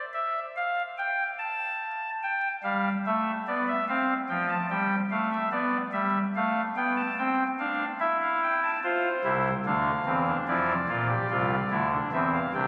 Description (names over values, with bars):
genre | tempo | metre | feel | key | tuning
classical, baroque-style 3-part fugue for pipe organ | 73 BPM | 4/4 | straight | F major | A4 = 440 Hz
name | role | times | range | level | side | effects
pipe organ, soft reed | solo | 0.1-12.7 s | Bb1 to A5 | -28 LUFS | equal | none
room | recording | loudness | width
wet cathedral reverb, RT60 5.2 s | recorded on a phone in the room, club reverb, vinyl crackle | -28 LUFS | mono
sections
0.0-12.7 A section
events
none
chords
0.0 N.C.; 2.2 G13; 3.9 F; 5.5 G7; 7.2 C; 8.8 F5; 10.5 Bb; 12.1 C